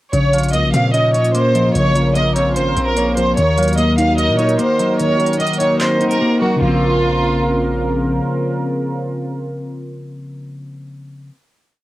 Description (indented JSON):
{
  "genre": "hip hop, trap",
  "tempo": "148 BPM",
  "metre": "4/4",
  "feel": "half-time",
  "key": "Bb minor",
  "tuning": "A4 = 445 Hz",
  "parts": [
    { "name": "rich chamber violin section", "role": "melody", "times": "0.1-7.8 s", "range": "F4 to F5", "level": "-18 LUFS", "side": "right 1 dB", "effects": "cassette tape" },
    { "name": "mellow electric guitar", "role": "accompaniment", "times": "0.1-11.3 s", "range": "Db3 to Eb5", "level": "-19 LUFS", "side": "left 2 dB", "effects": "phaser, cassette tape" },
    { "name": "sweeping resonant pad", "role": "sustained chords", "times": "0.1-10.6 s", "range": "Db3 to Bb4", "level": "-23 LUFS", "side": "right 1 dB", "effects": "chorus, cassette tape" },
    { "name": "long sustained 808-style bass", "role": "bass", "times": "0.1-8.2 s", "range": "Ab1 to Bb2", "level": "-21 LUFS", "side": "equal", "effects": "none" },
    { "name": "trap drum kit", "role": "drums", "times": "0.1-6.2 s", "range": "handclaps, hi-hat", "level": "-27 LUFS", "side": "equal", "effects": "cassette tape" },
    { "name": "soft octave-layered synth lead", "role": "second line", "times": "0.3-7.8 s", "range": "Bb4 to F5", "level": "-23 LUFS", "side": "right 2 dB", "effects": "chorus, cassette tape, analog delay" }
  ],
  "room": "light reverb",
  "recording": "home recording on cassette",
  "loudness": "-14 LUFS",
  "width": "side -16 dB against mid",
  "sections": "0.1-6.6 breakdown; 6.6-9.9 final chord",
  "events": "drums muted 6.2-6.6",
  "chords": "0.1 Bbmadd9; 3.4 Ebm; 6.6 Bbmadd9",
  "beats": "| 0.13 0.54 0.94 1.35 | 1.75 2.16 2.56 2.97 | 3.37 3.78 4.18 4.59 | 5.00 5.40 5.80 6.21 | 6.62 7.02 7.43 7.83 | 8.24 8.64 9.05 9.45"
}